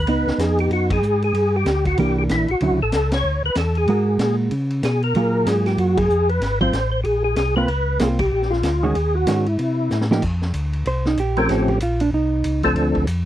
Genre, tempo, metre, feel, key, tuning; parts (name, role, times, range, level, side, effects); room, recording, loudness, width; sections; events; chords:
soul jazz organ trio; 189 BPM; 4/4; swing 61% on 8ths; F mixolydian from 10.2 s; A4 = 437 Hz
percussive tonewheel organ; melody; 0.0-13.1 s; F3 to C#5; -21 LUFS; equal; slow rotary speaker, chorus vibrato
mellow tonewheel organ; bass; 0.0-13.3 s; Ab1 to Db3; -21 LUFS; equal; slow rotary speaker
hollow-body jazz guitar; accompaniment; 0.1-12.6 s; D3 to C5; -21 LUFS; right 3 dB
vintage drum kit; drums; 0.1-13.2 s; crash cymbal, hi-hat, kick drum, ride cymbal, snare drum; -29 LUFS; equal
little or no reverb; dry, close 1970s-style studio recording; -17 LUFS; side -12 dB against mid
0.1-10.2 A section; 10.2-13.3 B section
band accent 0.9, 3.1, 5.9, 8.2; drum fill 9.9-10.2; hollow-body jazz guitar solo 10.2-13.3
0.1 Db9sus4; 1.3 G5; 2.0 C9; 2.6 Dmaj9; 3.9 Absus2; 4.5 Abmadd11; 5.2 Gbmaj9; 6.4 Ab69; 7.7 Db6; 8.3 Bb7; 9.0 Ebm7; 9.6 C6; 10.2 Fsus24; 11.5 A7alt